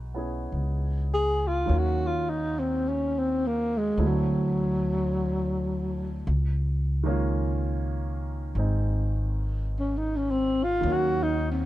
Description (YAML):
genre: jazz ballad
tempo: 52 BPM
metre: 4/4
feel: swing 68% on 8ths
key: unclear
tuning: A4 = 440 Hz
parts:
  - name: warm baby grand piano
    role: accompaniment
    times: 0.0-11.7 s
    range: D3 to G#4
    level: -33 LUFS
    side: right 2 dB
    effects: none
  - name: upright bass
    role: bass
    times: 0.0-11.7 s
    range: Ab1 to Eb2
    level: -27 LUFS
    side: equal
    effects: none
  - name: breathy tenor saxophone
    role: melody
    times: 1.1-11.7 s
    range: F#3 to G#4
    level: -26 LUFS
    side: equal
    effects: none
room: little or no reverb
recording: dark, warm production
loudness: -24 LUFS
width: side -15 dB against mid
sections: 0.0-11.7 A section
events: tenor saxophone solo 0.0-11.7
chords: 0.0 Emaj9; 1.7 Ebm7; 4.0 D9; 6.3 Db69; 10.8 Ebm7